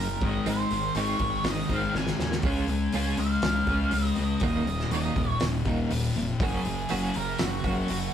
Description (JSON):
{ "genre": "quiet-loud alternative rock", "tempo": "121 BPM", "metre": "4/4", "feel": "straight", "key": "unclear", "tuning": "A4 = 440 Hz", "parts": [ { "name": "octave-fuzz lead guitar", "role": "melody", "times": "0.0-8.1 s", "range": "Gb4 to Ab5", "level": "-32 LUFS", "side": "right 2 dB", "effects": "distortion" }, { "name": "thick fuzz guitar", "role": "riff", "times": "0.0-8.1 s", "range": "Eb2 to Db4", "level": "-28 LUFS", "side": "left 3 dB", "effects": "distortion" }, { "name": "growling picked electric bass", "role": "bass", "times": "0.0-8.1 s", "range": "Eb1 to Eb2", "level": "-32 LUFS", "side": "right 1 dB", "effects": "overdrive" }, { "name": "twelve-string electric guitar", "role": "arpeggios", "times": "0.2-7.9 s", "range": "Eb3 to Ab4", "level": "-34 LUFS", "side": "right 5 dB", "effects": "tremolo" }, { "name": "loose indie drum kit", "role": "drums", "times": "0.2-8.0 s", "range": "hi-hat, kick drum, snare drum", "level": "-31 LUFS", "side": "equal", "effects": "none" } ], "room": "light reverb", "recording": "rough rehearsal-room recording", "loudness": "-24 LUFS", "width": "side -9 dB against mid", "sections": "0.0-8.1 A section", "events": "drum fill 2.0-2.5", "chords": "0.2 Ab; 2.5 Db; 4.4 Ebm; 6.4 Gb" }